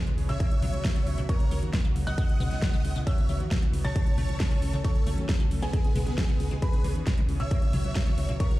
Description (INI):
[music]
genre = uplifting trance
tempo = 135 BPM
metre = 4/4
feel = straight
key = unclear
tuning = A4 = 444 Hz
[part]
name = lush unison pad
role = sustained chords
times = 0.0-8.6 s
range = C#3 to A4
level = -38 LUFS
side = right 1 dB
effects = chorus, sidechain pumping
[part]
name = liquid acid bass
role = arpeggios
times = 0.0-8.5 s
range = A#2 to C#4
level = -38 LUFS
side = left 2 dB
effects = phaser, analog chorus, sidechain pumping, digital delay
[part]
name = impact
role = sound effects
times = 0.3-1.3 s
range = none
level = barely audible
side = none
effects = none
[part]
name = solid FM bass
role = bass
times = 0.1-8.6 s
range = C#2 to D#2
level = -29 LUFS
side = equal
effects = sidechain pumping
[part]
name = big-room dance drum kit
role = drums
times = 0.1-8.6 s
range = hi-hat, snare drum, toms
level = -35 LUFS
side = equal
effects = overdrive, sidechain pumping on hats, sidechain pumping on toms, sidechain pumping on cymbals
[part]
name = big supersaw lead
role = melody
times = 0.3-8.6 s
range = B3 to A5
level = -37 LUFS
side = equal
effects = sidechain pumping, dub echo
[part]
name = dark grand piano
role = second line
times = 0.3-8.6 s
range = G#5 to A6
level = -42 LUFS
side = equal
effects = sidechain pumping, digital delay
[part]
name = electronic kick drum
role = drums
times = 0.4-8.5 s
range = none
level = -25 LUFS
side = equal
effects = overdrive
[sound]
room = digital ambience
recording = played on a big sound system in a bare room, large studio reverb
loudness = -24 LUFS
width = side -17 dB against mid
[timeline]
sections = 0.0-8.6 A section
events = impact 0.0-1.3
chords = 0.4 Bsus4/C#; 1.3 F#/C#; 2.2 C#m7; 3.1 Bsus4/C#; 4.0 A/C#; 4.8 F#m/C#; 5.7 G#m/C#; 6.6 C#m7; 7.5 Bsus4/C#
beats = 0.40 0.84 | 1.29 1.73 2.18 2.62 | 3.07 3.51 3.96 4.40 | 4.84 5.29 5.73 6.18 | 6.62 7.07 7.51 7.96 | 8.40